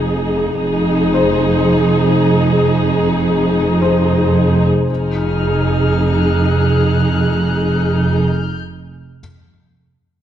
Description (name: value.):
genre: cinematic.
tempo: 56 BPM.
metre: 4/4.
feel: straight.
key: F minor.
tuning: A4 = 440 Hz.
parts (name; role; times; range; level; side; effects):
warm studio viola section; accompaniment; 0.0-8.2 s; Eb4 to Ab4; -17 LUFS; left 1 dB; none.
rich studio cello section; bass; 0.0-8.2 s; F2; -17 LUFS; right 1 dB; none.
warm chamber double bass section; bass; 0.0-8.2 s; F1; -19 LUFS; right 3 dB; none.
felt-muted upright piano; texture; 0.0-4.9 s; C5 to F5; -23 LUFS; left 7 dB; none.
rich studio violin section; texture; 4.9-8.6 s; F6 to Gb6; -26 LUFS; left 6 dB; none.
room: moderate scoring stage reverb, RT60 1.6 s.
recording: dark, warm production.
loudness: -12 LUFS.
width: side -10 dB against mid.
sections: 0.0-4.9 A section; 4.9-9.2 B section.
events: none.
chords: 0.0 Fm7.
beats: | 0.61 1.68 2.75 3.82 | 4.89 5.97 7.04 8.11.